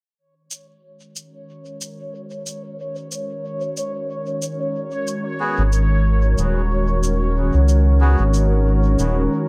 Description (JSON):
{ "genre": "ambient dub", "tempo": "92 BPM", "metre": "4/4", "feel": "swing 56% on 16ths", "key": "Eb minor", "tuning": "A4 = 439 Hz", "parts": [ { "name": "warbly tape-like pad", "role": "sustained chords", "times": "1.4-9.5 s", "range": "Eb3 to Bb4", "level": "-28 LUFS", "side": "equal", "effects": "chorus, built-in reverb" }, { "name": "bubbling stepped-filter texture", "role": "texture", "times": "1.4-9.5 s", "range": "Db5", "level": "-30 LUFS", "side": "equal", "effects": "chorus, built-in reverb" }, { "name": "cabasa", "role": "drums", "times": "0.5-9.1 s", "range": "none", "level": "-33 LUFS", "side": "equal", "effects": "none" }, { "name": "melodica", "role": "stabs", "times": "5.4-8.2 s", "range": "Cb4 to Ab4", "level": "-30 LUFS", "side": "equal", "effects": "dub echo" }, { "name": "round analog bass", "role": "bass", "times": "5.6-9.3 s", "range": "Eb1 to Db2", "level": "-18 LUFS", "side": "equal", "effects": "none" } ], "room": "light reverb", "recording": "echo-heavy mix", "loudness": "-19 LUFS", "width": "mono", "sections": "0.2-9.5 A section", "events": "fade-in on ambient pad 0.2-9.5", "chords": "0.2 Ebm7; 5.4 Ab7(no3)", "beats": "| 0.18 0.83 1.49 2.14 | 2.79 3.44 4.09 4.75 | 5.40 6.05 6.70 7.36 | 8.01 8.66 9.31" }